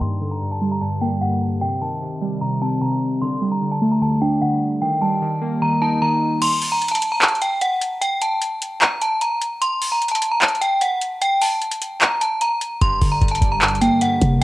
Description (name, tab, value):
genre	hip hop, trap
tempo	150 BPM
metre	4/4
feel	half-time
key	G harmonic minor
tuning	A4 = 440 Hz
part	metallic FM bell	melody	0.0-14.4 s	F#5 to C6	-21 LUFS	equal	chorus, low-pass filter, cassette tape
part	glassy digital keys	accompaniment	0.0-6.4, 12.8-14.4 s	G2 to Eb4	-20 LUFS	equal	chorus, low-pass filter, cassette tape
part	booming analog drum machine	drums	6.4-14.4 s	crash cymbal, handclaps, hi-hat, kick drum	-20 LUFS	equal	cassette tape
part	clean 808-style bass	bass	12.8-14.4 s	G1 to C3	-20 LUFS	equal	none
room	light reverb, digital ambience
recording	home recording on cassette, low-pass filter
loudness	-17 LUFS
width	side -17 dB against mid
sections	0.0-6.4 A section; 6.4-14.4 B section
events	filter sweep 0.0-6.4; kick muted 6.4-12.8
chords	0.0 Gm; 1.6 Cm; 3.2 Dsus4; 4.8 Eb; 6.4 N.C.; 12.8 Gm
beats	| 0.02 0.42 0.82 1.22 | 1.62 2.02 2.42 2.82 | 3.22 3.62 4.02 4.42 | 4.82 5.22 5.62 6.02 | 6.42 6.82 7.22 7.62 | 8.02 8.42 8.82 9.22 | 9.62 10.02 10.42 10.82 | 11.22 11.62 12.02 12.42 | 12.82 13.22 13.62 14.02 | 14.42